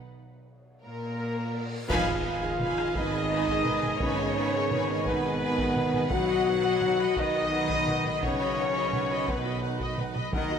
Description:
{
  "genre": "cinematic, epic orchestral film score",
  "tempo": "57 BPM (dotted quarters)",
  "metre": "6/8",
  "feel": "straight",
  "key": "unclear",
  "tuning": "A4 = 440 Hz",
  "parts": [
    { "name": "reverse cymbal and impact", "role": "sound effects", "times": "1.4-4.0 s", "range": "none", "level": "-46 LUFS", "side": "equal", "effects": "none" },
    { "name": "rich symphonic violin section", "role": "melody", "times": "0.8-10.6 s", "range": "Bb4 to F#5", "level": "-36 LUFS", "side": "left 3 dB", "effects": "none" },
    { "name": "warm trumpet section", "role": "stabs", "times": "0.8-10.6 s", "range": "Bb4 to F#5", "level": "-32 LUFS", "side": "equal", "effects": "none" },
    { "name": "clear symphonic cello section", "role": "bass", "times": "0.8-10.6 s", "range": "Bb2 to F#3", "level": "-35 LUFS", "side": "right 3 dB", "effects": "none" },
    { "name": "dark French horn section", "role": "sustained chords", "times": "0.9-10.6 s", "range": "Bb3 to F#4", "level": "-30 LUFS", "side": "left 3 dB", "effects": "none" },
    { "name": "rich symphonic violin section", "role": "second line", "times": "1.9-10.6 s", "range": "Eb5 to Cb6", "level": "-36 LUFS", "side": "left 2 dB", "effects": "none" },
    { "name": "rich chamber viola section", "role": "accompaniment", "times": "1.9-10.6 s", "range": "Eb4 to D#5", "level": "-36 LUFS", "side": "right 1 dB", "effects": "none" },
    { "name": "dark trombone section", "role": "sustained chords", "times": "1.9-10.6 s", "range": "D#3 to Cb4", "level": "-37 LUFS", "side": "right 2 dB", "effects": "none" },
    { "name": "clear symphonic double bass section", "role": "bass", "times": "1.9-10.6 s", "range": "Ab1 to Eb2", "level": "-36 LUFS", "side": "right 4 dB", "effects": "none" },
    { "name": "solo taiko drums", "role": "drums", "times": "1.9-10.6 s", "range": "none", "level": "-35 LUFS", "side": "equal", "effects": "none" },
    { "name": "clash cymbals and concert bass drum", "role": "percussion", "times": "1.9-3.3 s", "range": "none", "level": "-42 LUFS", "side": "equal", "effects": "none" },
    { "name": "timpani", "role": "percussion", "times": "10.3-10.6 s", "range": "Eb3", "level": "-37 LUFS", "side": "left 1 dB", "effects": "none" }
  ],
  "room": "wet concert hall reverb, RT60 2.3 s",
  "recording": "none",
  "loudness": "-25 LUFS",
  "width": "side -7 dB against mid",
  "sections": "0.0-1.9 A section; 1.9-10.6 B section",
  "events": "break 0.0-1.9; reverse cymbal 1.4-1.9; band accent 1.9-2.6; impact 1.9-4.0",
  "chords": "0.0 N.C.; 1.9 Abm; 6.1 B"
}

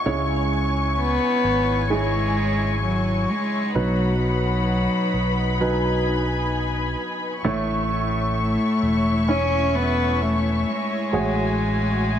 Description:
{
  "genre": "pop",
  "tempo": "65 BPM",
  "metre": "4/4",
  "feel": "straight",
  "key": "C# minor",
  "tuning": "A4 = 440 Hz",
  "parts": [
    { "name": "warm baby grand piano", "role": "accompaniment", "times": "0.0-12.2 s", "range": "A2 to C#5", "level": "-26 LUFS", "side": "right 2 dB", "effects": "none" },
    { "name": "dark studio string section", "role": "sustained chords", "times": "0.0-12.2 s", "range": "D#4 to C#6", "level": "-27 LUFS", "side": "left 3 dB", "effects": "none" },
    { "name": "fingered electric bass", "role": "bass", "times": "0.1-12.2 s", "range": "E1 to C#2", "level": "-25 LUFS", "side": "equal", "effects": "none" },
    { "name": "warm cello", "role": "melody", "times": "1.0-12.2 s", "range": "F#3 to C#4", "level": "-23 LUFS", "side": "left 1 dB", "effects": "ping-pong delay" }
  ],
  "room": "light reverb, small room ambience",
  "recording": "none",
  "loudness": "-20 LUFS",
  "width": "side -9 dB against mid",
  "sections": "0.0-12.2 A section",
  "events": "none",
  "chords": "0.1 C#m; 3.7 B; 7.4 A; 11.1 F#madd9/A"
}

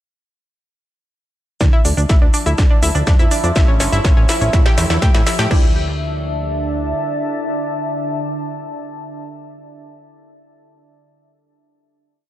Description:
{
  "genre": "melodic techno",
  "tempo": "123 BPM",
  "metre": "4/4",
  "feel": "straight",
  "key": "D harmonic minor",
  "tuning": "A4 = 440 Hz",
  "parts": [
    { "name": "deep dark ambient pad", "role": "sustained chords", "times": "2.4-9.1 s", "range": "D4 to A5", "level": "-24 LUFS", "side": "equal", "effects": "chorus, built-in reverb, sidechain pumping" },
    { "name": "analog pluck", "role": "arpeggios", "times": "1.6-5.7 s", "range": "C#4 to G4", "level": "-22 LUFS", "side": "left 1 dB", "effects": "chorus, sidechain pumping, analog delay" },
    { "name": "filtered dub chord stab", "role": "stabs", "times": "1.6-9.1 s", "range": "Bb2 to E4", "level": "-29 LUFS", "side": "equal", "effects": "none" },
    { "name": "plucky analog bass", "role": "bass", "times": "1.6-6.9 s", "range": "G1 to A2", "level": "-20 LUFS", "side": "equal", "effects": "sidechain pumping" },
    { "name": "analog drone", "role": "drone", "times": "2.1-9.1 s", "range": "D3 to E4", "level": "-28 LUFS", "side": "right 1 dB", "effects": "chorus, phaser, sidechain pumping" },
    { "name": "electronic kick drum", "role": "drums", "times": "1.6-5.6 s", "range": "none", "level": "-13 LUFS", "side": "equal", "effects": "none" },
    { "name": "techno drum kit", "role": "drums", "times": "1.6-5.6 s", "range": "crash cymbal, hi-hat, shaker, snare drum", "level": "-24 LUFS", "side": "equal", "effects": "high-pass filter on snare, high-pass filter on perc, high-pass filter on hats, high-pass filter on cymbals, high-pass filter on room" }
  ],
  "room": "digital ambience",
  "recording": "dry, gritty hardware recording, cassette tape",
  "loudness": "-14 LUFS",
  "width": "side -13 dB against mid",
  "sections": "1.6-5.5 build; 5.5-9.4 final chord",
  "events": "build-up 1.6-5.5; drum fill 1.6-5.5",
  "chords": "1.6 Dmadd9; 3.6 A; 4.5 Edim; 5.5 Dmadd9"
}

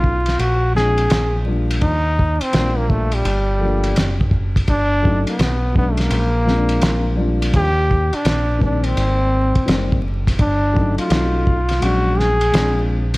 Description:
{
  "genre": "hip hop, jazz-hop",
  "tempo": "84 BPM",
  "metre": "4/4",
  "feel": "swing 65% on 16ths",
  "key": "unclear",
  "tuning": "A4 = 440 Hz",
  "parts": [
    { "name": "brilliant trombone", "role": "melody", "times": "0.0-12.9 s", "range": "G3 to Ab4", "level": "-20 LUFS", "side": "equal", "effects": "none" },
    { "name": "dark concert grand piano", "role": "accompaniment", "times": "0.0-13.0 s", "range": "Eb3 to D#4", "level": "-24 LUFS", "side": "left 2 dB", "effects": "none" },
    { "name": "deep dub picked electric bass", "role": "bass", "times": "0.0-13.2 s", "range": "F#1 to Eb2", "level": "-19 LUFS", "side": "equal", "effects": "none" },
    { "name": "cloth-damped thuddy drum kit", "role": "drums", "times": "0.0-13.2 s", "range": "hi-hat, kick drum, ride cymbal, snare drum", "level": "-21 LUFS", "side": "equal", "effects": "none" }
  ],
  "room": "studio reverb",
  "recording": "vinyl crackle",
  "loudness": "-15 LUFS",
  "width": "side -21 dB against mid",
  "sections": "0.0-4.7 A section; 4.7-13.2 A section",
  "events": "none",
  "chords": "0.4 Bb7b13; 1.1 Bb7; 1.8 Ebmaj7; 3.2 Gm9; 4.7 G5; 5.4 Bsus2; 6.1 Bb7#9; 6.8 Bb9; 7.5 Eb; 9.0 Abmaj9; 10.4 G5; 11.1 B9; 11.8 Bb7alt; 12.5 Bb9"
}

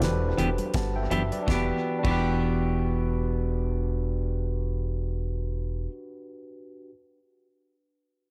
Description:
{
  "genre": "lovers rock reggae",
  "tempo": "82 BPM",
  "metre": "4/4",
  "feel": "swing 56% on 16ths",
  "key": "E minor",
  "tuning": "A4 = 439 Hz",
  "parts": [
    { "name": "overdriven tine electric piano", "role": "accompaniment", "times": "0.0-6.9 s", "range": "D4 to A5", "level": "-35 LUFS", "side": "equal", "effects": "dub echo" },
    { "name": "electric guitar with an envelope filter", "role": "riff", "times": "0.0-1.2 s", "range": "E3 to G3", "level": "-36 LUFS", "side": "equal", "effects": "dub echo" },
    { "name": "deep dub fingered electric bass", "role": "bass", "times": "0.0-5.9 s", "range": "E1 to G1", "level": "-31 LUFS", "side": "equal", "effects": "none" },
    { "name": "damped 70s drum kit", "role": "drums", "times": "0.0-2.2 s", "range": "crash cymbal, hi-hat, kick drum, snare drum", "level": "-34 LUFS", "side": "equal", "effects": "gated reverb, dub echo" },
    { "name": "congas", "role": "percussion", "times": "0.0-2.2 s", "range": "none", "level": "-41 LUFS", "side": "equal", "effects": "none" },
    { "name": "clean electric guitar", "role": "stabs", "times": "0.4-5.9 s", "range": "E3 to G4", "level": "-33 LUFS", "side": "equal", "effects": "none" }
  ],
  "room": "small room ambience",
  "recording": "none",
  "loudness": "-28 LUFS",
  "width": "mono",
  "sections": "0.0-1.5 A section; 1.5-4.4 B section",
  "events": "none",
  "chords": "0.0 Em7"
}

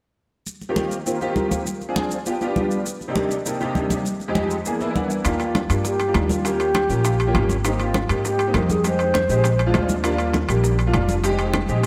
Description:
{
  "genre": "Afro-Cuban jazz",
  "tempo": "200 BPM",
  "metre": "4/4",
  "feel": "straight",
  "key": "Eb major",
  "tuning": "A4 = 441 Hz",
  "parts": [
    { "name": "congas", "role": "percussion", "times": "0.5-11.9 s", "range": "none", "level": "-29 LUFS", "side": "equal", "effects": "none" },
    { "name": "maracas", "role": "percussion", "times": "0.5-11.9 s", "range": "none", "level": "-38 LUFS", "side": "equal", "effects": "none" },
    { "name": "clear concert grand piano", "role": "accompaniment", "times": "0.7-11.8 s", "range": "F2 to G#5", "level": "-26 LUFS", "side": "equal", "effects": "ensemble chorus" },
    { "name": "upright bass", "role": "bass", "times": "5.2-11.9 s", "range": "F1 to Ab2", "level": "-25 LUFS", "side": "equal", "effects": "none" },
    { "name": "timbales", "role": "percussion", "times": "5.2-11.9 s", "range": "none", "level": "-32 LUFS", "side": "equal", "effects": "none" },
    { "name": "mellow hollow alto flute", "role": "melody", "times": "5.3-9.9 s", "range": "Eb4 to C5", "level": "-26 LUFS", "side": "equal", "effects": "tape echo" },
    { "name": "bongos", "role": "percussion", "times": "5.3-11.9 s", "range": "none", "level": "-34 LUFS", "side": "equal", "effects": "none" }
  ],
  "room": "moderate lush hall reverb, RT60 2.0 s",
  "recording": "dreamy mix soaked in reverb",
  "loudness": "-21 LUFS",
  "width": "mono",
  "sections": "0.5-5.3 A section; 5.3-11.9 B section",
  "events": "grand piano fill 4.7-5.3",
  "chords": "0.5 Eb6; 1.7 Dm7b5; 2.3 G7; 2.9 Cm7; 4.1 Fm7; 4.7 E7#11; 5.3 Ebmaj7; 6.5 Eb7; 7.6 Abmaj7; 8.8 Fm7; 9.4 Bb7; 10.0 Ebmaj7; 11.2 Fm7"
}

